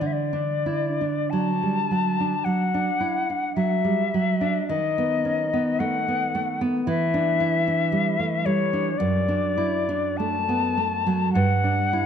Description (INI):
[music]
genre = romantic duo for flute and classical guitar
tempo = 43-57 BPM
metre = 4/4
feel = rubato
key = D major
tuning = A4 = 441 Hz
[part]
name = silver concert flute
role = melody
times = 0.0-12.1 s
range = C#5 to A5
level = -24 LUFS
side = left 6 dB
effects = none
[part]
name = nylon-string guitar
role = accompaniment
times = 0.0-12.1 s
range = F#2 to E4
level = -24 LUFS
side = right 3 dB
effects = none
[sound]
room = moderate concert hall reverb, RT60 2.3 s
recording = dark, warm production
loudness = -21 LUFS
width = side -8 dB against mid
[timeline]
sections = 0.0-12.1 A section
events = none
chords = 0.0 D; 4.7 B7/D#; 6.9 Em7; 9.0 D/F#; 11.3 G5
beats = 1.31 2.45 3.56 | 4.69 5.80 6.87 7.93 | 8.99 10.17 11.34